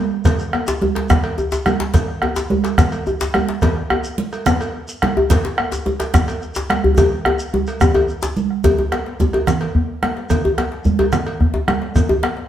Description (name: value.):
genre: west african traditional, West African drum ensemble.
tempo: 144 BPM (dotted quarters).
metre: 12/8.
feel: straight.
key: none.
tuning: none.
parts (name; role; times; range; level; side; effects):
bombo; percussion; 0.2-12.4 s; none; -19 LUFS; equal; none.
shekere; percussion; 0.2-12.1 s; none; -26 LUFS; equal; none.
congas; percussion; 0.3-12.1 s; none; -23 LUFS; right 6 dB; none.
cowbell; percussion; 0.3-12.4 s; none; -28 LUFS; right 3 dB; none.
djembe; percussion; 0.3-12.5 s; none; -24 LUFS; left 4 dB; none.
djembe; percussion; 0.7-12.4 s; none; -19 LUFS; left 2 dB; none.
room: moderate stone room reverb, RT60 1.1 s.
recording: band playing live in one room.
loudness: -16 LUFS.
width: side -11 dB against mid.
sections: 0.0-8.6 A section; 8.6-12.5 B section.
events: drum fill 7.0-8.6.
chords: none.